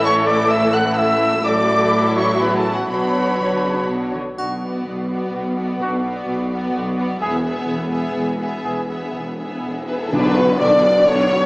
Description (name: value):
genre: cinematic, heroic adventure film score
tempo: 126 BPM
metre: 3/4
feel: straight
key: B dorian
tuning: A4 = 445 Hz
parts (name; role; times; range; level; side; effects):
- clear studio violin section; melody; 0.0-11.5 s; A4 to F#6; -26 LUFS; equal; none
- warm symphonic violin section; second line; 0.0-11.5 s; D4 to D5; -24 LUFS; left 1 dB; none
- rich symphonic viola section; accompaniment; 0.0-11.5 s; D3 to C#5; -24 LUFS; equal; none
- mellow trumpet; stabs; 0.0-8.8 s; F#4 to F#5; -21 LUFS; equal; none
- clear symphonic double bass section; bass; 0.0-11.5 s; E1 to B1; -27 LUFS; equal; none
- rich studio cello section; bass; 0.0-11.5 s; E2 to D3; -25 LUFS; equal; none
- warm French horn section; sustained chords; 4.4-11.5 s; B3 to D5; -18 LUFS; equal; none
- triangle, cymbal swell and tam-tam; percussion; 4.4-11.5 s; none; -27 LUFS; equal; none
- timpani; percussion; 10.1-10.8 s; B2; -25 LUFS; equal; none
room: wet scoring stage reverb, RT60 1.6 s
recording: small speaker sound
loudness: -16 LUFS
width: side -25 dB against mid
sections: 0.0-4.4 A section; 4.4-10.1 B section; 10.1-11.5 A section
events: band accent 10.1-10.6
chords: 0.0 A; 1.5 Dadd9/A; 2.9 Bmadd9; 4.4 Bm; 7.2 E; 10.1 Bm